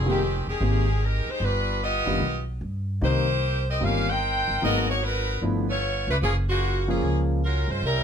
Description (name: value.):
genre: jazz, big band swing.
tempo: 150 BPM.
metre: 4/4.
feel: swing 64% on 8ths.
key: unclear.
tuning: A4 = 439 Hz.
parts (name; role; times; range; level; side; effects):
edgy saxophone section; melody; 0.0-8.0 s; Db3 to G5; -26 LUFS; equal; none.
upright bass; bass; 0.0-8.0 s; E1 to G2; -26 LUFS; equal; none.
warm concert grand piano; accompaniment; 0.1-7.4 s; Eb3 to G4; -28 LUFS; left 1 dB; none.
room: light reverb.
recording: none.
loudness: -22 LUFS.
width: side -8 dB against mid.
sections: 0.0-8.0 A section.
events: none.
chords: 0.0 Fm11; 1.4 G7b13; 3.0 Cm7; 4.6 Abm9; 5.4 G13; 6.2 Gbmaj7.